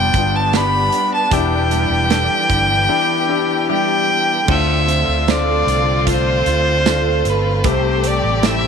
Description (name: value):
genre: pop ballad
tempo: 76 BPM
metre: 4/4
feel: straight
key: unclear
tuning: A4 = 440 Hz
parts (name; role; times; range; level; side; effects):
- rich violin; melody; 0.0-8.7 s; B4 to B5; -18 LUFS; equal; none
- warm concert grand piano; accompaniment; 0.0-8.7 s; G2 to A4; -22 LUFS; left 12 dB; none
- warm studio string section; sustained chords; 0.0-8.7 s; C3 to G4; -23 LUFS; left 1 dB; none
- fingerpicked steel-string acoustic guitar; arpeggios; 0.0-8.7 s; E2 to A4; -25 LUFS; right 13 dB; none
- fretless electric bass; bass; 0.0-8.7 s; E1 to D2; -20 LUFS; right 1 dB; none
- modern studio drum kit; drums; 0.1-8.6 s; crash cymbal, hi-hat, kick drum, snare drum; -21 LUFS; right 5 dB; none
room: moderate spring reverb, RT60 2.4 s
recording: 1960s-style stereo with parts hard left and right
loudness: -14 LUFS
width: side -6 dB against mid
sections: 0.0-4.5 A section; 4.5-8.7 B section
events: none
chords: 0.0 G; 1.3 Em7; 4.5 Dm7; 7.6 Am7